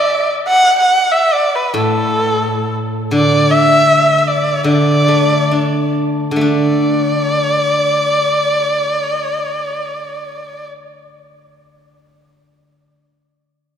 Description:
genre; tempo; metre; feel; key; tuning
chinese traditional, Chinese chamber ensemble; 63-94 BPM; 4/4; rubato; unclear; A4 = 440 Hz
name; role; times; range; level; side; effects
warm erhu; melody; 0.0-10.7 s; A4 to F#5; -14 LUFS; equal; none
steel-string zither; accompaniment; 1.7-12.9 s; A2 to D4; -16 LUFS; left 1 dB; none
room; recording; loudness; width
wet church reverb, RT60 3.3 s; recorded in a church or concert hall; -12 LUFS; side -8 dB against mid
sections
0.0-6.4 A section; 6.4-10.1 B section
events
slowing down 0.5-6.4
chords
none

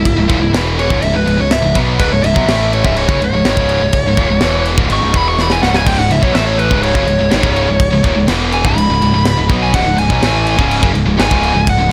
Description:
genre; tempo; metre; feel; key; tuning
heavy metal; 124 BPM; 4/4; straight; C# minor; A4 = 439 Hz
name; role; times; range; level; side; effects
dark smooth lead guitar; melody; 0.0-11.9 s; E4 to C#6; -19 LUFS; equal; overdrive
heavy high-gain guitar; riff; 0.0-11.9 s; C#2 to B3; -23 LUFS; equal; distortion
tight distorted guitar; riff; 0.0-11.9 s; C#2 to B3; -21 LUFS; equal; distortion
fuzz picked electric bass; bass; 0.0-11.9 s; C#1 to B1; -19 LUFS; equal; overdrive
tight metal drum kit; drums; 0.1-11.8 s; crash cymbal, kick drum, snare drum; -20 LUFS; equal; none
scooped high-gain guitar; riff; 5.9-11.9 s; C#2 to B3; -24 LUFS; equal; none
room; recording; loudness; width
studio ambience; none; -13 LUFS; mono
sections
0.0-11.9 A section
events
lead electric guitar solo 0.0-11.9; drum fill 5.4-5.9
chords
0.0 C#m; 5.1 E5; 5.6 C#m

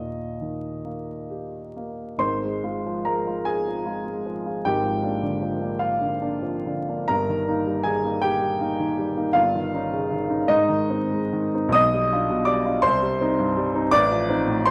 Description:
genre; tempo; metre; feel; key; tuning
classical, romantic character piece for solo piano; 44-57 BPM (dotted quarters); 6/8; rubato; Eb major; A4 = 440 Hz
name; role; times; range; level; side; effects
warm grand piano; solo; 0.0-14.7 s; G1 to Eb6; -24 LUFS; equal; none
room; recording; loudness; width
wet large studio reverb, RT60 1.4 s; vinyl crackle; -24 LUFS; mono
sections
0.0-2.2 A section; 2.2-14.7 B section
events
none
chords
0.0 Eb; 2.2 Fm/Ab; 4.6 Bb7/Ab; 7.1 Eb/G; 9.4 Eb7/G; 10.5 Ab; 11.7 G7/B; 12.8 Cm; 13.9 F7/A

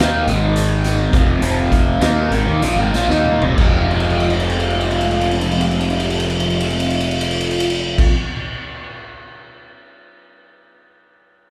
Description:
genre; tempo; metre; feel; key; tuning
psychedelic rock; 184-214 BPM (eighths); 7/8; straight; F minor; A4 = 439 Hz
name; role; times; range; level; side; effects
raw garage guitar; riff; 0.0-8.1 s; F2 to Eb4; -20 LUFS; equal; overdrive, phaser
fuzz fingered electric bass; bass; 0.0-8.1 s; F1 to Eb2; -24 LUFS; equal; overdrive
raw garage drum kit; drums; 0.0-9.6 s; crash cymbal, hi-hat, kick drum, ride cymbal, snare drum, toms; -23 LUFS; equal; none
room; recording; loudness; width
moderate large studio reverb, RT60 1.1 s; band playing live in one room; -17 LUFS; mono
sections
0.0-3.6 A section; 3.6-8.1 B section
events
slowing down 0.0-3.6; drum fill 3.1-3.6, 3.9-8.0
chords
0.3 Ab5; 1.1 Fm

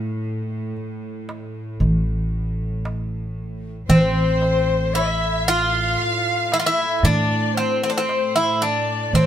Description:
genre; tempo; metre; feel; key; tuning
Turkish makam ensemble; 114 BPM (eighths); 10/8; straight; A makam nihavent; A4 = 440 Hz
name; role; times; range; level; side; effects
upright bass; bass; 0.0-9.3 s; A1 to A2; -23 LUFS; equal; none
clear studio cello section; drone; 0.0-9.3 s; A2; -31 LUFS; right 1 dB; none
darbuka; percussion; 0.2-9.3 s; none; -21 LUFS; right 2 dB; none
Greek bouzouki; melody; 3.9-9.3 s; C4 to F4; -21 LUFS; equal; none
breathy bright ney; second line; 3.9-9.3 s; B4 to F5; -27 LUFS; left 6 dB; none
warm studio violin section; second line; 3.9-9.3 s; C5 to F5; -26 LUFS; right 2 dB; none
room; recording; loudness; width
moderate stone room reverb, RT60 0.9 s; band playing live in one room; -18 LUFS; side -10 dB against mid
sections
0.0-9.3 A section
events
none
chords
none

